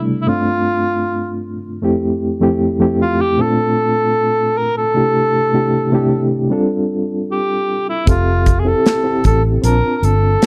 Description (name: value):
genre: lush 1970s-style soul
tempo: 77 BPM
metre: 4/4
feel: straight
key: unclear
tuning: A4 = 440 Hz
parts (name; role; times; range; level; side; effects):
- reed electric piano; accompaniment; 0.0-10.5 s; F2 to A5; -19 LUFS; equal; fast tremolo
- mellow cor anglais; melody; 0.2-10.5 s; E4 to Bb4; -20 LUFS; equal; none
- vintage muted fingered electric bass; bass; 8.1-10.4 s; F1 to Bb1; -18 LUFS; equal; none
- modern studio drum kit; drums; 8.1-10.5 s; hi-hat, kick drum, snare drum; -17 LUFS; equal; none
room: little or no reverb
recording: dry, close 1970s-style studio recording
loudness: -16 LUFS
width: mono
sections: 0.0-10.5 A section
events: none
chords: 0.3 G9sus4; 1.8 Fmaj7; 3.4 Bbmaj9; 5.0 C6; 6.5 G9sus4; 8.1 Fmaj7; 9.6 Bbmaj9